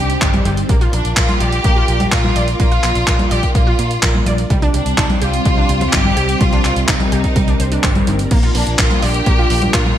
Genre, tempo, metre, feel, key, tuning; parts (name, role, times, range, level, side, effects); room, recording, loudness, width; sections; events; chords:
italo disco; 126 BPM; 4/4; straight; Bb major; A4 = 440 Hz
clear chamber violin section; melody; 0.0-10.0 s; D4 to G4; -20 LUFS; left 1 dB
string machine, full ensemble; sustained chords; 0.0-10.0 s; G3 to D5; -23 LUFS; equal; ensemble chorus
wide unison pluck; arpeggios; 0.0-9.9 s; G3 to D5; -23 LUFS; right 2 dB; vintage 12-bit sampler grit, ping-pong delay
fingered electric bass with an envelope filter; bass; 0.0-9.9 s; G1 to Bb2; -19 LUFS; equal; tube saturation
clean 12-bit digital drum machine; drums; 0.1-10.0 s; congas, crash cymbal, handclaps, hi-hat; -20 LUFS; left 1 dB; gated reverb
electronic kick drum; drums; 0.2-9.8 s; -17 LUFS; equal
light reverb; bright 1980s-style digital production; -12 LUFS; side -11 dB against mid
0.0-10.0 A section
0.0 Cmadd9; 0.7 Bb; 4.5 Cmadd9; 8.3 Bb